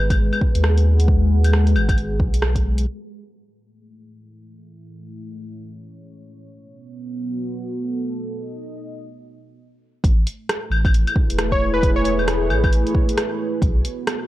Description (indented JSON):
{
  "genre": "future garage",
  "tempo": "134 BPM",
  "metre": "4/4",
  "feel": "swing 61% on 16ths",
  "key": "unclear",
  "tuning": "A4 = 440 Hz",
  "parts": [
    { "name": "dark analog pad", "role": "sustained chords", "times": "0.0-14.3 s", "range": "G#3 to F#5", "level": "-26 LUFS", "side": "equal", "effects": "chorus, vintage 12-bit sampler grit, sidechain pumping" },
    { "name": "warm sub bass", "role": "bass", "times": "0.0-2.9, 10.0-13.8 s", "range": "E1 to D#2", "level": "-19 LUFS", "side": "equal", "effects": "sidechain pumping" },
    { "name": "deep house drum kit", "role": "drums", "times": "0.1-2.9, 10.0-14.2 s", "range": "claves, hi-hat, rim click", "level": "-25 LUFS", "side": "equal", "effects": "none" },
    { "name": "electronic kick drum", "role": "drums", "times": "0.1-2.6, 10.0-13.7 s", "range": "none", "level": "-19 LUFS", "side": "equal", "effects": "none" },
    { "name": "plucky unison lead", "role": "melody", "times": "11.5-12.1 s", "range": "B4 to C#5", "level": "-24 LUFS", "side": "left 1 dB", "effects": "tape echo" }
  ],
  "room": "light reverb",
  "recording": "cassette tape, low-pass filter",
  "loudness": "-17 LUFS",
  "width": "side -15 dB against mid",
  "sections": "0.0-2.9 A section; 2.9-10.0 B section; 10.0-14.3 C section",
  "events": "filter sweep on analog synth pad 2.9-10.0; break 9.6-10.0",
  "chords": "0.0 G#m7; 2.9 Amaj7; 6.5 B7; 10.0 A5; 13.6 B7",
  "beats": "0.19 0.64 | 1.08 1.53 1.98 2.43 | 2.88 3.32 3.77 4.22 | 4.67 5.11 5.56 6.01 | 6.46 6.91 7.35 7.80 | 8.25 8.70 9.14 9.59 | 10.04 10.49 10.94 11.38 | 11.83 12.28 12.73 13.17 | 13.62 14.07"
}